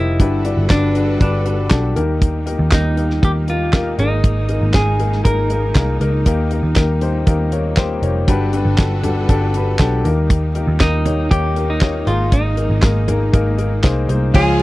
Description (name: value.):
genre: piano-driven pop.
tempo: 119 BPM.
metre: 4/4.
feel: straight.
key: unclear.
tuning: A4 = 440 Hz.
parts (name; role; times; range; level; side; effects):
clean electric guitar; melody; 0.0-6.0, 10.8-14.6 s; D4 to Bb4; -22 LUFS; equal; tape echo.
warm upright piano; accompaniment; 0.0-14.6 s; G2 to F5; -21 LUFS; left 4 dB; none.
clear studio string section; sustained chords; 0.0-14.6 s; G3 to B4; -28 LUFS; right 2 dB; none.
vintage muted picked electric bass; bass; 0.0-14.6 s; F1 to Eb2; -18 LUFS; equal; none.
damped 70s drum kit; drums; 0.2-14.6 s; crash cymbal, handclaps, hi-hat, kick drum, ride cymbal, snare drum, toms; -15 LUFS; equal; none.
dark studio violin section; second line; 14.3-14.6 s; F4 to F5; -22 LUFS; left 1 dB; none.
fingerpicked steel-string acoustic guitar; riff; 14.3-14.6 s; Db3 to Ab4; -18 LUFS; right 3 dB; none.
room: little or no reverb.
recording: dry, close 1970s-style studio recording.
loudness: -14 LUFS.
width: side -18 dB against mid.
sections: 0.0-14.3 A section.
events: none.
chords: 0.2 Gmaj7; 2.0 Eb; 4.0 Absus2; 6.3 Eb; 8.3 Gmaj7; 10.0 Eb; 12.1 Absus2.